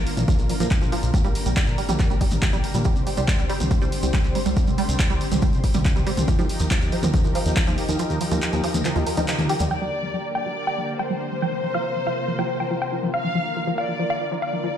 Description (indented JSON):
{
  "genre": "uplifting trance",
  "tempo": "140 BPM",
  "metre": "4/4",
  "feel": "straight",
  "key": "G minor",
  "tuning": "A4 = 440 Hz",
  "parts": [
    { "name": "fat analog bass", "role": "bass", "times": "0.0-9.7 s", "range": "Bb1 to Bb2", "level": "-25 LUFS", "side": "equal", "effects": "sidechain pumping" },
    { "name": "punchy analog drum machine", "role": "drums", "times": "0.1-9.8 s", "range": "crash cymbal, handclaps, hi-hat, toms", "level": "-28 LUFS", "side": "left 1 dB", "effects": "low-pass filter on hats, low-pass filter on snare, low-pass filter on toms, low-pass filter on cymbals, low-pass filter on room" },
    { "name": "tight sequenced synth", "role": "arpeggios", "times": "0.2-14.7 s", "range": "F3 to Bb4", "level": "-28 LUFS", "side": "right 3 dB", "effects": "chorus, phaser, sidechain pumping, digital delay" },
    { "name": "shekere", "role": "percussion", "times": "0.2-9.7 s", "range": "none", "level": "-36 LUFS", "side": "right 1 dB", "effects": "none" },
    { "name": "electronic kick drum", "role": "drums", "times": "0.3-7.7 s", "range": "none", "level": "-21 LUFS", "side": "equal", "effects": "none" },
    { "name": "wide unison pluck", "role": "melody", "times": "9.7-14.8 s", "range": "F5 to G5", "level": "-29 LUFS", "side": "equal", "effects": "sidechain pumping, tape echo" },
    { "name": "dark studio violin section", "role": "second line", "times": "9.7-14.8 s", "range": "C5 to F5", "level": "-27 LUFS", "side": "left 1 dB", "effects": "digital delay" }
  ],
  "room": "light reverb",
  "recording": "played on a big sound system in a bare room, stone room reverb",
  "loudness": "-20 LUFS",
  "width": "side -10 dB against mid",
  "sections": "0.0-9.7 A section; 9.7-14.8 B section",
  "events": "kick drops out 8.0-9.7; band accent 9.3; filter sweep on synth pluck 9.7-14.8",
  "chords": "0.0 Bb; 1.1 Gm/Bb; 2.9 Csus2; 6.3 Ebadd9; 9.7 Gm; 11.4 Fsus4; 13.1 Bb"
}